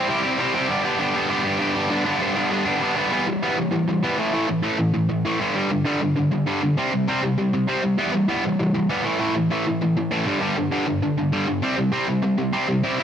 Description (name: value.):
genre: punk.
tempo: 198 BPM.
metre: 4/4.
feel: straight.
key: unclear.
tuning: A4 = 439 Hz.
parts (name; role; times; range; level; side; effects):
distorted electric guitar; solo; 0.0-13.0 s; G2 to G4; -20 LUFS; equal; overdrive, cassette tape.
room: light reverb.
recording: home recording on cassette.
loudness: -20 LUFS.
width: side -9 dB against mid.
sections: 0.0-1.9 A section; 1.9-3.1 B section; 3.1-12.8 C section.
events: none.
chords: 0.0 C; 0.7 G; 3.1 Em; 4.2 A5; 5.4 G5; 6.8 C5; 8.0 Em; 9.0 A5; 10.3 G5; 11.6 C5.